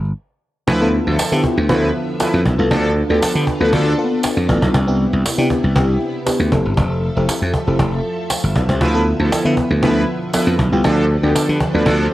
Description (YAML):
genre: early-eighties boogie funk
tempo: 118 BPM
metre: 4/4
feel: straight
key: D dorian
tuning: A4 = 445 Hz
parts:
  - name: slap bass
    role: bass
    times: 0.0-12.1 s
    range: F1 to D3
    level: -17 LUFS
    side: equal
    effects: none
  - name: cajon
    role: drums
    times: 0.1-12.1 s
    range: none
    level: -21 LUFS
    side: equal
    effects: cassette tape
  - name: analog synth brass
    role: second line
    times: 0.7-3.9, 8.8-12.1 s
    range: D3 to B4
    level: -21 LUFS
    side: right 1 dB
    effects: chorus, cassette tape
  - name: string machine, full ensemble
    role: sustained chords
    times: 0.7-12.1 s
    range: C3 to E5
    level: -24 LUFS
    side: equal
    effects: ensemble chorus, cassette tape
  - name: FM electric piano with soft pad layer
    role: accompaniment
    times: 0.8-12.1 s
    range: Bb3 to F5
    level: -21 LUFS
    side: left 1 dB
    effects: chorus, phaser, cassette tape
  - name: tambourine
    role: percussion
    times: 1.2-11.5 s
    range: none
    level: -27 LUFS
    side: right 3 dB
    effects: none
room: light reverb, small room ambience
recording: home recording on cassette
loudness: -14 LUFS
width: side -15 dB against mid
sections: 0.7-12.1 A section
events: break 0.2-0.7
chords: 0.0 N.C.; 0.7 Dm69; 2.7 G9 (rootless); 4.7 Cmaj7; 6.5 Fmaj7; 8.8 Dm69; 10.8 G9/D (rootless)